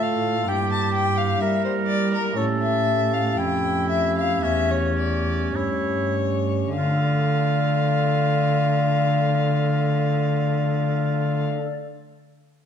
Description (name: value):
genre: classical, baroque-style sonata movement with continuo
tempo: 49-66 BPM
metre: 4/4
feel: straight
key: D minor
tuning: A4 = 440 Hz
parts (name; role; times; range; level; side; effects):
- rich violin; melody; 0.0-11.5 s; Bb4 to A5; -26 LUFS; left 6 dB; none
- warm oboe; second line; 0.0-11.5 s; C#4 to Bb4; -29 LUFS; right 5 dB; none
- pipe organ, stopped flute; accompaniment; 0.0-11.7 s; E2 to D5; -25 LUFS; left 1 dB; none
- rich cello; bass; 0.0-11.5 s; E2 to G3; -25 LUFS; right 2 dB; none
room: wet recital hall reverb, RT60 1.5 s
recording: dark, warm production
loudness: -20 LUFS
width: side -8 dB against mid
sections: 0.0-6.8 A section; 6.8-11.6 B section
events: slowing down 0.0-6.8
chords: 0.5 Edim/G; 2.4 A7; 6.8 Dm